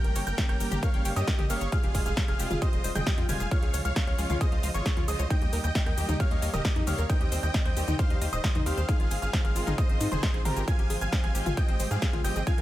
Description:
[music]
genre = uplifting trance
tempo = 134 BPM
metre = 4/4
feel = straight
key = F minor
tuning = A4 = 440 Hz
[part]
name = big supersaw lead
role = melody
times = 0.0-12.6 s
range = F4 to Ab5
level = -35 LUFS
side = right 1 dB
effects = vintage 12-bit sampler grit, sidechain pumping, tape echo
[part]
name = dark baby grand piano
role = second line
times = 0.0-12.6 s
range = Bb5 to Ab6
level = -39 LUFS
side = right 1 dB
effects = sidechain pumping, ping-pong delay
[part]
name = dark chamber string section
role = sustained chords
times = 0.0-12.6 s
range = C3 to G4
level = -37 LUFS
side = right 1 dB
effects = sidechain pumping
[part]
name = analog pluck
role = arpeggios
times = 0.0-12.6 s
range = Eb4 to G5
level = -37 LUFS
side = left 3 dB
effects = chorus, sidechain pumping, ping-pong delay
[part]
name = tight sequencer bass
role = bass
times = 0.0-12.6 s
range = Eb1 to Ab2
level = -31 LUFS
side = equal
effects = sidechain pumping
[part]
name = big-room dance drum kit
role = drums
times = 0.0-12.6 s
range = hi-hat, shaker, snare drum, toms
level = -34 LUFS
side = equal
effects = studio ambience
[part]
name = electronic kick drum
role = drums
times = 0.4-12.6 s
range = none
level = -26 LUFS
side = equal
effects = studio ambience
[sound]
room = digital ambience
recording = none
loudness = -24 LUFS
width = side -14 dB against mid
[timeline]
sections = 0.0-12.6 A section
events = none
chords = 0.0 Gdim; 1.7 Fmadd9; 3.5 Db; 5.3 Eb; 7.1 Cm/Eb; 8.9 Ab6; 10.7 Fmadd9/Ab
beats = 0.38 0.83 1.27 | 1.72 2.17 2.62 3.07 | 3.51 3.96 4.41 4.86 | 5.30 5.75 6.20 6.65 | 7.10 7.54 7.99 8.44 | 8.89 9.34 9.78 10.23 | 10.68 11.13 11.57 12.02 | 12.47

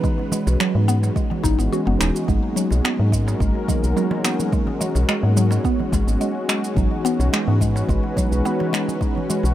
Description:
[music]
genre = organic downtempo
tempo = 107 BPM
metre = 4/4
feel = straight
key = G# minor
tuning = A4 = 441 Hz
[part]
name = mellow tine electric piano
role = accompaniment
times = 0.0-9.2 s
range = E3 to E4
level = -27 LUFS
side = right 2 dB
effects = medium stereo tremolo, vintage 12-bit sampler grit, sidechain pumping, tape echo
[part]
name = warm analog pad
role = sustained chords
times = 0.0-9.5 s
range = G#3 to B4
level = -26 LUFS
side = left 1 dB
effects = chorus, sidechain pumping
[part]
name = mallet-like synth pluck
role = arpeggios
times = 0.0-9.4 s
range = F#3 to F#4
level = -25 LUFS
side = equal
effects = chorus, phaser, tape echo
[part]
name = electronic kick drum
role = drums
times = 0.0-9.1 s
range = none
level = -23 LUFS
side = equal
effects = overdrive
[part]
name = electronic shaker and finger snaps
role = drums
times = 0.0-9.5 s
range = none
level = -26 LUFS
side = right 1 dB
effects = overdrive
[part]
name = darbuka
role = percussion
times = 0.2-9.5 s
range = none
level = -32 LUFS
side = right 2 dB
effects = none
[part]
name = woody FM bass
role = bass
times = 0.5-9.5 s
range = D#1 to G#2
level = -19 LUFS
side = equal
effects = none
[sound]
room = light reverb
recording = none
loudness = -18 LUFS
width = side -13 dB against mid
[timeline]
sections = 0.0-9.5 A section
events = none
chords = 0.0 C#m9; 2.3 G#m9; 6.8 C#m9/G#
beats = | 0.04 0.60 1.16 1.73 | 2.29 2.85 3.41 3.97 | 4.53 5.09 5.65 6.21 | 6.77 7.33 7.89 8.45 | 9.02

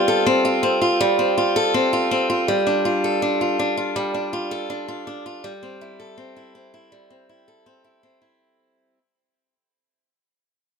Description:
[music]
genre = folktronica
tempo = 81 BPM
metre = 4/4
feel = straight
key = unclear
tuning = A4 = 440 Hz
[part]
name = picked swing-style acoustic guitar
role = solo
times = 0.0-9.0 s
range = G3 to A4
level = -19 LUFS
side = equal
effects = none
[sound]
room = moderate echo chamber reverb, RT60 1.6 s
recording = none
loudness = -18 LUFS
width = side -6 dB against mid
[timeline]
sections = 0.0-8.4 A section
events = fade-out 0.0-8.4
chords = 0.0 Fadd9/G; 2.5 Dm/G; 5.4 Am7/G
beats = 0.26 1.00 1.74 | 2.48 3.22 3.96 4.70 | 5.45 6.19 6.93 7.67

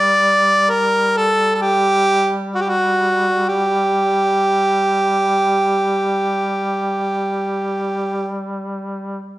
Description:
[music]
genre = caucasian folk, Caucasian lament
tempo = free time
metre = none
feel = none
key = G harmonic minor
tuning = A4 = 438 Hz
[part]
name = mellow harmonica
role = melody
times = 0.0-8.3 s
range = F#4 to D5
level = -15 LUFS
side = right 1 dB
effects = none
[part]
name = warm duduk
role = drone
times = 0.0-9.3 s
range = G3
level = -24 LUFS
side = equal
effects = none
[sound]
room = moderate recital hall reverb, RT60 1.2 s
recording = none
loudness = -15 LUFS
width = side -16 dB against mid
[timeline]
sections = 0.0-9.4 A section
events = none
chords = none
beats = free time

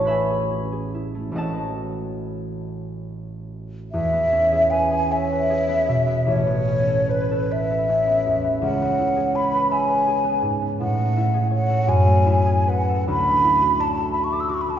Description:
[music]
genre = classical, impressionist duo for flute and harp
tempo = 45-57 BPM (dotted quarters)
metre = 6/8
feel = rubato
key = unclear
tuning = A4 = 440 Hz
[part]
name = concert harp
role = accompaniment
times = 0.0-14.8 s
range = A1 to C#6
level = -22 LUFS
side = right 1 dB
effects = none
[part]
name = mellow hollow concert flute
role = melody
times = 3.9-14.8 s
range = B4 to E6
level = -20 LUFS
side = equal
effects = none
[sound]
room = wet concert hall reverb, RT60 1.8 s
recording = heard from further back in the room, nothing above 7.7 kHz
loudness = -18 LUFS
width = side -10 dB against mid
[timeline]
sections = 0.0-3.9 A section; 3.9-14.8 B section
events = none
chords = 0.0 Amaj7; 1.3 Am6; 3.9 E6; 6.3 Aadd9; 8.6 C#m7; 10.8 Amaj7; 11.9 F#m11; 13.1 Dadd9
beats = 0.06 | 1.34 2.67 | 3.92 5.10 | 6.26 7.51 | 8.63 9.72 | 10.79 11.88 | 13.07 14.15

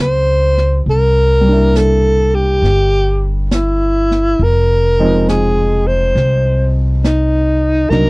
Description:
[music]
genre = jazz ballad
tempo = 68 BPM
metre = 4/4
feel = swing 67% on 8ths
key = unclear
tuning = A4 = 440 Hz
[part]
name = breathy alto saxophone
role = melody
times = 0.0-8.1 s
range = Eb4 to C5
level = -14 LUFS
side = equal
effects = none
[part]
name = warm grand piano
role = accompaniment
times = 0.0-8.1 s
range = F3 to F5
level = -20 LUFS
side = right 1 dB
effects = none
[part]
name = upright bass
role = bass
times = 0.0-8.1 s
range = F1 to Db2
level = -14 LUFS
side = equal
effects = none
[part]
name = jazz brush drum kit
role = drums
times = 0.6-8.1 s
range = brushed snare drum, hi-hat, snare drum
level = -19 LUFS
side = equal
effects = none
[sound]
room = little or no reverb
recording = dry, close 1970s-style studio recording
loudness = -11 LUFS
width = side -26 dB against mid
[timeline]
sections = 0.0-8.1 A section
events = none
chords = 0.0 Gbmaj9#11; 0.9 C7; 4.4 Fm7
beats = | 0.87 1.75 2.63 3.51 | 4.39 5.27 6.15 7.03 | 7.91

